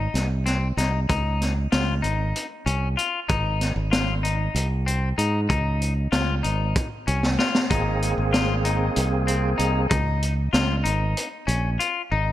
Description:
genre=progressive instrumental, band music in an uneven meter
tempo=190 BPM (eighths)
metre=7/8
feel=straight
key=unclear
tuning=A4 = 440 Hz
part: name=clean electric guitar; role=arpeggios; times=0.0-12.3 s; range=C4 to F4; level=-27 LUFS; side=left 5 dB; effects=none
part: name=modern bright fingered electric bass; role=bass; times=0.0-12.3 s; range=Ab1 to Ab2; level=-23 LUFS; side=right 1 dB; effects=none
part: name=crunchy breakbeat drum kit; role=drums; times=0.2-11.9 s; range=hi-hat, kick drum, snare drum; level=-26 LUFS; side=equal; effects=gated reverb
part: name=bright tonewheel organ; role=accompaniment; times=7.7-9.9 s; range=Bb3 to Ab4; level=-26 LUFS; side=right 2 dB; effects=fast rotary speaker
room=light reverb, small room ambience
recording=bright 1980s-style digital production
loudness=-21 LUFS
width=side -13 dB against mid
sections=0.0-12.3 A section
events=drum fill 7.2-7.7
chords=0.0 Ab (rootless); 1.1 Db; 3.3 Ab; 5.5 Db; 7.7 Abadd9; 9.9 Db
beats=0.15 0.46 0.78 | 1.09 1.41 1.72 2.04 2.35 2.67 2.98 | 3.30 3.61 3.93 4.24 4.56 4.87 5.19 | 5.50 5.82 6.13 6.45 6.76 7.08 7.39 | 7.71 8.02 8.34 8.65 8.97 9.28 9.60 | 9.91 10.23 10.54 10.86 11.17 11.49 11.80 | 12.12

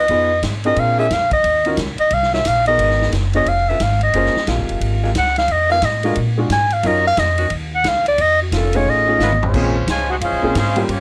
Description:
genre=jazz, big band swing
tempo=178 BPM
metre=4/4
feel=swing 62% on 8ths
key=Bb minor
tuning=A4 = 438 Hz
part: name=breathy clarinet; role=melody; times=0.0-9.5 s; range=Gb4 to Ab5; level=-18 LUFS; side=equal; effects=none
part: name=warm saxophone section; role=sustained chords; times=0.0-10.9 s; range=C3 to Bb4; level=-28 LUFS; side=equal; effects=none
part: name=upright bass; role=bass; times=0.0-11.0 s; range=F1 to Bb2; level=-23 LUFS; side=equal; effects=none
part: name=clear concert grand piano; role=accompaniment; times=0.1-10.9 s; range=Gb3 to Db5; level=-24 LUFS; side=equal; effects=none
part: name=swinging big-band drum kit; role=drums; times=0.1-11.0 s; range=crash cymbal, hi-hat, kick drum, ride cymbal, snare drum, toms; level=-28 LUFS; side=equal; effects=none
part: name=warm trumpet section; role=melody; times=9.2-11.0 s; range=G#3 to Ab5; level=-25 LUFS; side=equal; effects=none
part: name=mellow trombone section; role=second line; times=9.2-11.0 s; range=Db3 to Gb4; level=-27 LUFS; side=equal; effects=none
room=light reverb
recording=dry, gritty hardware recording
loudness=-17 LUFS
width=mono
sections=0.0-9.5 A section; 9.5-11.0 B section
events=clarinet solo 0.0-9.5; drum fill 9.2-9.5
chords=0.1 Fm7b5; 0.8 Bb7; 1.4 Ebm9; 2.8 Abm7; 3.5 Db(b9) (rootless); 4.1 Gbmaj9#11; 5.5 Fm7b5; 6.2 Bb7b13; 6.8 Ebm9; 8.2 F7alt; 9.5 Bbm9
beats=| 0.09 0.43 0.77 1.10 | 1.44 1.78 2.12 2.46 | 2.79 3.13 3.47 3.81 | 4.14 4.48 4.82 5.15 | 5.49 5.83 6.17 6.50 | 6.84 7.18 7.51 7.85 | 8.19 8.53 8.86 9.20 | 9.54 9.87 10.21 10.55 | 10.88

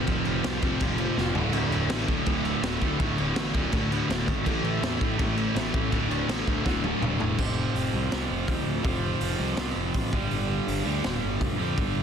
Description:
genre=punk rock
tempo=164 BPM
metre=4/4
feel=straight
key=D minor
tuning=A4 = 439 Hz
part: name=biting overdriven guitar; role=riff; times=0.0-12.0 s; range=D2 to A3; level=-29 LUFS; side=right 2 dB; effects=none
part: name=sludgy distorted guitar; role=riff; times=0.0-7.4 s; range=D2 to A3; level=-30 LUFS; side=left 1 dB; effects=overdrive
part: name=fuzz picked electric bass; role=bass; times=0.0-12.0 s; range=D1 to F2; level=-32 LUFS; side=equal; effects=overdrive
part: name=raw garage drum kit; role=drums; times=0.1-11.9 s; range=crash cymbal, hi-hat, kick drum, snare drum, splash cymbal, toms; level=-28 LUFS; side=left 1 dB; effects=none
room=light reverb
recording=dense, heavily limited modern master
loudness=-24 LUFS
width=side -7 dB against mid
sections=0.0-7.4 A section; 7.4-12.0 B section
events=drum fill 1.2-1.5, 6.7-7.4; half time 7.4-12.0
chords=0.0 F5; 1.4 D5; 4.5 A5; 5.9 D5; 7.4 F5; 10.1 G5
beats=| 0.08 0.44 0.81 1.17 | 1.54 1.90 2.27 2.63 | 3.00 3.36 3.73 4.09 | 4.46 4.82 5.19 5.55 | 5.92 6.28 6.65 7.02 | 7.38 7.75 8.11 8.48 | 8.85 9.21 9.58 9.95 | 10.31 10.68 11.04 11.41 | 11.77

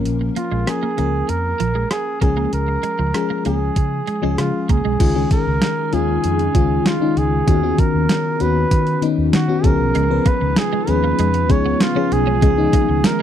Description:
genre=1980s-style pop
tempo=97 BPM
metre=4/4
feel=straight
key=unclear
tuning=A4 = 440 Hz
part: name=FM electric piano with soft pad layer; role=accompaniment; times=0.0-13.2 s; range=D#3 to B4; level=-21 LUFS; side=left 6 dB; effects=chorus, tremolo
part: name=mellow fretless electric bass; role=bass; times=0.1-13.0 s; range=A#1 to D#3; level=-21 LUFS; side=right 1 dB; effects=wide subtle chorus
part: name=clean 12-bit digital drum machine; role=drums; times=0.1-13.2 s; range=crash cymbal, hi-hat, kick drum, rim click, snare drum, tambourine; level=-18 LUFS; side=right 1 dB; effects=overdrive
part: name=twelve-string electric guitar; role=riff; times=0.2-5.0, 10.0-12.9 s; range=E#3 to C#4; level=-27 LUFS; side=right 8 dB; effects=analog chorus, slapback echo
part: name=warm flugelhorn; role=melody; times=0.4-13.2 s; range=E#4 to C#5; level=-22 LUFS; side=right 3 dB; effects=slapback echo
part: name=glassy FM pad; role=sustained chords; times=5.5-13.2 s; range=C#3 to G#4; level=-26 LUFS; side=right 1 dB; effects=ensemble chorus, built-in reverb
room=little or no reverb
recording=dry, close 1970s-style studio recording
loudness=-15 LUFS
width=side -10 dB against mid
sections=0.0-5.0 A section; 5.0-13.2 B section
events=none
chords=0.0 A#m; 2.2 C#; 5.0 C#add9; 7.5 Badd9/D#; 9.6 C#7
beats=| 0.05 0.67 1.29 1.91 | 2.53 3.15 3.77 4.38 | 5.00 5.62 6.24 6.86 | 7.48 8.10 8.71 9.33 | 9.95 10.57 11.19 11.81 | 12.42 13.04

